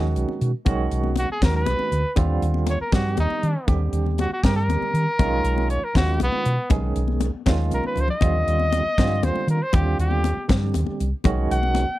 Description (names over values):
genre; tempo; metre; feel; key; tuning
electric jazz fusion; 79 BPM (dotted quarters); 6/8; straight; Eb major; A4 = 444 Hz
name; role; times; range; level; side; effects
barky tine electric piano; accompaniment; 0.0-11.9 s; D3 to Ab4; -28 LUFS; right 5 dB; medium tremolo, wide subtle chorus
hollow-body short-scale fingered electric bass; bass; 0.0-11.9 s; B1 to Eb3; -22 LUFS; equal; none
crisp fusion drum kit; drums; 0.2-11.9 s; hi-hat, kick drum, snare drum; -22 LUFS; equal; none
congas; percussion; 0.3-11.9 s; none; -30 LUFS; left 8 dB; none
clear trumpet; melody; 1.2-12.0 s; B3 to F#5; -25 LUFS; equal; none
room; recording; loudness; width
little or no reverb; dark, warm production; -19 LUFS; side -16 dB against mid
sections
0.0-12.0 A section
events
trumpet solo 0.0-12.0; drum fill 7.7-8.2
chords
0.0 Badd9; 2.2 Ebmaj9; 5.2 Bmaj9; 8.2 Ebmaj9; 11.3 Badd9